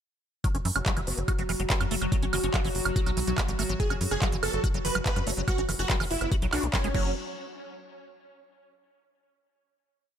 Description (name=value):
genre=psychedelic trance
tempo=143 BPM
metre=4/4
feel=straight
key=unclear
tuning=A4 = 441 Hz
part: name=pulsing gated texture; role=sustained chords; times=0.4-6.9 s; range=F#3 to F#4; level=-34 LUFS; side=left 1 dB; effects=chorus, built-in reverb, sidechain pumping
part: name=liquid acid bass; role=riff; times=0.4-7.1 s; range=E3 to F#4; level=-35 LUFS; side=right 1 dB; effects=chorus, auto-pan, cassette tape, sidechain pumping, dub echo
part: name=electronic kick drum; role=drums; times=0.4-7.0 s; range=none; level=-28 LUFS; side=equal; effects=none
part: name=techno drum kit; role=drums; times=0.4-7.0 s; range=crash cymbal, handclaps, hi-hat, woodblock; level=-31 LUFS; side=right 3 dB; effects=none
part: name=tight sequencer bass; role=bass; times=0.5-7.1 s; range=F#1 to F#2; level=-32 LUFS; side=equal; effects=tube saturation
part: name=vowel-sweep wobble bass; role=second line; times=1.1-7.2 s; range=F#3 to C#4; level=-45 LUFS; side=left 2 dB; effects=none
part: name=supersaw stab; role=melody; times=3.8-7.1 s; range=C#4 to B4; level=-32 LUFS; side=right 2 dB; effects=phaser, sidechain pumping, tape echo
room=light reverb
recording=none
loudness=-25 LUFS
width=side -9 dB against mid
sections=0.4-7.2 drop; 7.2-8.8 final hit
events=drop 0.4-7.2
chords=0.4 F#5; 7.2 N.C.